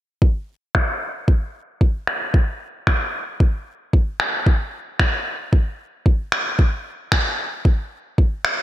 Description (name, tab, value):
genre	organic downtempo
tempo	113 BPM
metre	4/4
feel	swing 55% on 16ths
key	none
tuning	none
part	electronic kick drum	drums	0.2-8.3 s	none	-16 LUFS	equal	none
part	electronic finger snaps	drums	0.7-8.6 s	none	-23 LUFS	equal	low-pass filter on snare, gated reverb
room	light reverb, digital ambience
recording	bright 1980s-style digital production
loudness	-18 LUFS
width	side -13 dB against mid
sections	0.2-8.6 A section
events	filter sweep on drum 0.2-8.6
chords	none